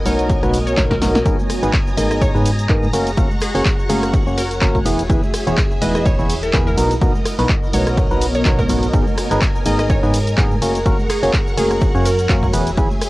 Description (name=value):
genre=piano house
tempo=125 BPM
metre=4/4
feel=swing 56% on 16ths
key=unclear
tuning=A4 = 435 Hz
part: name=string machine, violins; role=sustained chords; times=0.0-13.1 s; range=G#4 to D#6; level=-28 LUFS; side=equal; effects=ensemble chorus, sidechain pumping, cassette tape
part: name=granular cloud pad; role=texture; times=0.0-13.1 s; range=B3 to G#5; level=-28 LUFS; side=equal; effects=built-in reverb, sidechain pumping, cassette tape
part: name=glassy wavetable pluck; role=melody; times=0.1-12.5 s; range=G#4 to D#5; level=-25 LUFS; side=equal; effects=chorus, cassette tape, tape echo
part: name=percussive organ stab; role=riff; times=0.1-12.9 s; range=G#2 to C#5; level=-20 LUFS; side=equal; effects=chorus, sidechain pumping, cassette tape
part: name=organ-like FM bass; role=bass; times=0.1-12.9 s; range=E1 to G#2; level=-22 LUFS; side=equal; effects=tube saturation, sidechain pumping
part: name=punchy analog drum machine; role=drums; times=0.1-13.1 s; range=cabasa, handclaps, hi-hat, ride cymbal, rim click, snare drum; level=-24 LUFS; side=equal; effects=small room ambience, cassette tape
part: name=tambourine and congas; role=percussion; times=0.1-13.1 s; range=none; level=-29 LUFS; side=right 2 dB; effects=none
part: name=electronic kick drum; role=drums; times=0.3-12.9 s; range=none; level=-18 LUFS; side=equal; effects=small room ambience, cassette tape
room=light reverb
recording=home recording on cassette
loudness=-14 LUFS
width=side -19 dB against mid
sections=0.0-1.3 A section; 1.3-13.1 B section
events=drum fill 0.8-1.3; drop 1.3-13.1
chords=0.0 Bmaj7; 1.3 G#madd9; 2.9 F#; 4.9 E; 6.8 Bmaj7; 8.9 G#madd9; 10.6 F#; 12.5 E